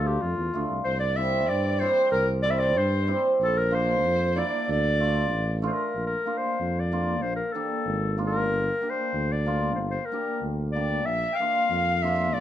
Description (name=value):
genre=klezmer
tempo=94 BPM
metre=2/4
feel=straight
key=unclear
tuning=A4 = 441 Hz
part: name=warm clarinet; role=melody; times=0.0-12.4 s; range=F4 to G5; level=-27 LUFS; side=left 2 dB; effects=plate reverb
part: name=cimbalom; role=accompaniment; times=0.0-12.2 s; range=G3 to G4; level=-29 LUFS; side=right 1 dB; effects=none
part: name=dark tuba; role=bass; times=0.0-12.4 s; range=G1 to G2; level=-28 LUFS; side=equal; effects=none
part: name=dark violin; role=second line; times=0.9-5.6, 11.1-12.4 s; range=A4 to F5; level=-33 LUFS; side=right 6 dB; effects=none
room=moderate studio reverb, RT60 0.6 s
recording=dark, warm production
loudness=-23 LUFS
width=side -11 dB against mid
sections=0.0-6.0 A section; 6.0-12.4 B section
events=none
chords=0.0 Dm; 0.8 C; 3.4 Bb; 4.7 Dm; 6.0 Bb; 8.5 Gm; 11.1 Bb